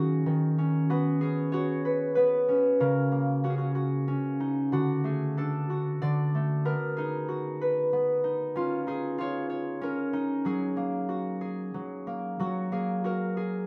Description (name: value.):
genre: children's music, lullaby.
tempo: 94 BPM.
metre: 3/4.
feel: straight.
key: F# major.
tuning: A4 = 441 Hz.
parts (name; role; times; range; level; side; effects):
concert harp; solo; 0.0-13.7 s; C#3 to D5; -28 LUFS; equal; none.
room: moderate studio reverb, RT60 0.8 s.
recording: band playing live in one room.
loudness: -28 LUFS.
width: mono.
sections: 0.0-12.4 A section; 12.4-13.7 A section.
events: none.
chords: 0.0 D#m7; 0.9 Bsus2; 2.8 F#/C#; 4.1 C#sus2; 4.7 D; 6.7 B; 8.6 C#add9; 10.5 F#add9.